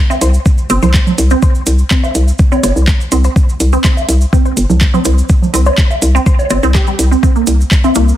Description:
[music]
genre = minimal techno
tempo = 124 BPM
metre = 4/4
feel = straight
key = unclear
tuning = A4 = 440 Hz
[part]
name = resonant blip pluck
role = riff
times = 0.1-8.0 s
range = G3 to C5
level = -17 LUFS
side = right 2 dB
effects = phaser, analog chorus, sidechain pumping, dub echo
[part]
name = cabasa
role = percussion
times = 0.1-8.2 s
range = none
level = -25 LUFS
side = right 2 dB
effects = none
[part]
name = woodblock, congas and bongos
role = percussion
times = 0.1-7.9 s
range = none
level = -18 LUFS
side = right 3 dB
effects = studio reverb
[part]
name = hollow knocking FM bass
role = bass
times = 0.2-8.1 s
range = G1 to C2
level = -10 LUFS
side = equal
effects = sidechain pumping
[part]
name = garage drum kit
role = drums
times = 0.2-8.1 s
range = handclaps, hi-hat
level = -18 LUFS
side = right 1 dB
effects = overdrive, studio reverb
[part]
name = electronic kick drum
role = drums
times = 0.5-7.8 s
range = none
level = -10 LUFS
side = equal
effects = overdrive, studio reverb
[sound]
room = digital ambience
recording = dense, heavily limited modern master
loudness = -9 LUFS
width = side -12 dB against mid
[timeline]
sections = 0.0-8.2 A section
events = none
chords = 0.0 C5

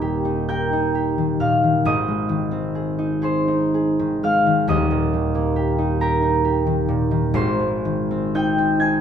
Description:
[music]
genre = classical, solo harp piece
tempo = 39-47 BPM (dotted quarters)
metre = 6/8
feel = rubato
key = Eb major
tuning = A4 = 442 Hz
[part]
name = concert harp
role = solo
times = 0.0-9.0 s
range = Eb1 to Ab6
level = -18 LUFS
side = equal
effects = none
[sound]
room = wet stone room reverb, RT60 1.1 s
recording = heard from further back in the room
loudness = -18 LUFS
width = side -8 dB against mid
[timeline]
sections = 0.0-9.0 A section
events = none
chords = 0.0 Eb; 1.8 Ab; 4.7 Eb; 7.4 Ab

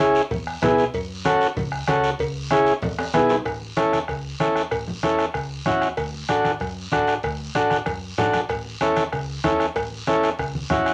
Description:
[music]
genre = latin, cumbia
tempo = 190 BPM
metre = 4/4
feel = straight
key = A major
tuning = A4 = 440 Hz
[part]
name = overdriven combo organ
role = accompaniment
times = 0.0-10.9 s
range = B3 to A4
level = -22 LUFS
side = equal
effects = none
[part]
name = fingered electric bass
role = bass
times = 0.0-10.9 s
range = A1 to F#2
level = -36 LUFS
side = equal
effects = none
[part]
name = guiro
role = percussion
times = 0.2-10.9 s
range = none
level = -38 LUFS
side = equal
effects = none
[part]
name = bombo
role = percussion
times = 0.3-10.9 s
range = none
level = -32 LUFS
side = equal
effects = none
[part]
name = congas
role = percussion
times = 0.3-10.9 s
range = none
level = -32 LUFS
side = equal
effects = none
[part]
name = cowbell and timbales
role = percussion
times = 0.3-10.6 s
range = none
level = -32 LUFS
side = equal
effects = none
[sound]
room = wet studio ambience, RT60 0.5 s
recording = none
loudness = -23 LUFS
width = mono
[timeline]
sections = 0.0-3.5 A section; 3.5-10.9 B section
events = drum fill 2.8-3.5, 7.9-8.5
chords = 0.3 E; 0.9 F#m; 2.2 C#m; 2.8 E; 3.5 A; 6.0 D; 8.5 A

